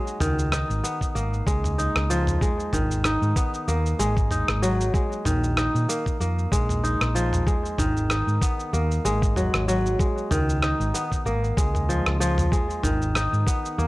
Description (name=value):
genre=organic downtempo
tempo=95 BPM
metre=4/4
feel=swing 56% on 16ths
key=G# dorian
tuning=A4 = 441 Hz
part: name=kora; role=arpeggios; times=0.0-13.9 s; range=D#3 to D#4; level=-25 LUFS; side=equal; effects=tape echo
part: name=dusty soul sampler-style drum kit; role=drums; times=0.1-13.9 s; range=cabasa, rim click, toms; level=-28 LUFS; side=equal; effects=studio reverb
part: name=woody fretless electric bass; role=bass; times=0.2-13.9 s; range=G#1 to A#2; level=-25 LUFS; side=equal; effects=transformer saturation, sidechain pumping
part: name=electronic kick drum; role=drums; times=1.0-13.6 s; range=none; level=-24 LUFS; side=equal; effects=studio reverb
room=light reverb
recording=dry, gritty hardware recording, cassette tape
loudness=-21 LUFS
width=side -19 dB against mid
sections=0.0-13.9 A section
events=none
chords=0.0 C#7; 2.4 G#m7; 4.9 A#5; 7.5 G#m7; 10.0 C#7; 12.5 G#m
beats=0.52 1.15 1.78 | 2.41 3.05 3.68 4.31 | 4.94 5.57 6.20 6.83 | 7.47 8.10 8.73 9.36 | 9.99 10.62 11.26 11.89 | 12.52 13.15 13.78